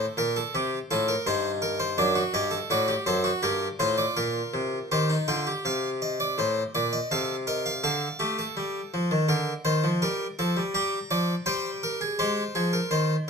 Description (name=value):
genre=classical, baroque-style 3-part fugue for harpsichord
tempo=83 BPM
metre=4/4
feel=straight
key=unclear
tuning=A4 = 440 Hz
part: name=harpsichord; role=solo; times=0.0-13.1 s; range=F#2 to Bb5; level=-24 LUFS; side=equal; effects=none
room=wet stone room reverb, RT60 1.1 s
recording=minimal, uncompressed stereo recording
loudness=-24 LUFS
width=side -5 dB against mid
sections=0.0-4.9 A section; 4.9-13.3 B section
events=none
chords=0.0 N.C.; 0.5 Am7b5; 2.0 D7/F#; 3.4 Gm; 4.9 Cm; 6.4 Adim; 7.8 Dm; 9.3 Bb/D; 10.8 Gm; 12.2 Fm